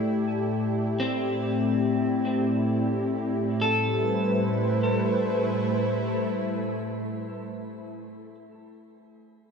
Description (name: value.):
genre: ambient.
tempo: free time.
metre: none.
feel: none.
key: A minor.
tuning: A4 = 438 Hz.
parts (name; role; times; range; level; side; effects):
warm analog pad; sustained chords; 0.0-7.7 s; A2 to D5; -27 LUFS; right 1 dB; chorus, shimmer reverb.
electric guitar at the edge of break-up; arpeggios; 0.0-8.3 s; C4 to A5; -28 LUFS; left 3 dB; lush chorus, analog delay, shimmer reverb.
bowed-like drone; drone; 0.0-7.7 s; A3 to E4; -32 LUFS; equal; built-in reverb.
room: wet plate reverb, RT60 3.1 s.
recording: echo-heavy mix, cassette tape.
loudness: -24 LUFS.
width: side -6 dB against mid.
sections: 0.0-3.6 A section; 3.6-6.9 B section.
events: none.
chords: 0.0 C69/A; 3.6 Am9.